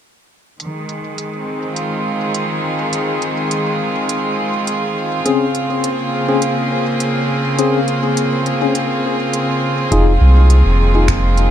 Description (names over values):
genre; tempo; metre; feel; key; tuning
ambient dub; 103 BPM; 4/4; swing 54% on 16ths; F minor; A4 = 440 Hz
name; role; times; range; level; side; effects
rich chamber string section; sustained chords; 0.6-11.5 s; Db3 to Ab4; -17 LUFS; right 1 dB; none
organic electronic drum kit; drums; 0.6-11.5 s; finger snaps, hi-hat; -26 LUFS; right 2 dB; low-pass filter on hats, low-pass filter on snare, dub echo
tine electric piano; stabs; 5.3-11.1 s; C4 to Ab4; -20 LUFS; left 4 dB; medium stereo tremolo, dub echo
round analog bass; bass; 9.9-11.5 s; F1 to C2; -11 LUFS; equal; none
electronic kick drum; drums; 9.9-11.2 s; none; -20 LUFS; equal; none
room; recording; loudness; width
light reverb; echo-heavy mix; -14 LUFS; side -10 dB against mid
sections
0.6-9.9 A section; 9.9-11.5 B section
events
none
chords
0.6 Fm7; 5.3 Bbm9; 9.9 Fm7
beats
| 0.60 1.18 1.76 2.35 | 2.93 3.51 4.09 4.68 | 5.26 5.84 6.42 7.01 | 7.59 8.17 8.75 9.34 | 9.92 10.50 11.08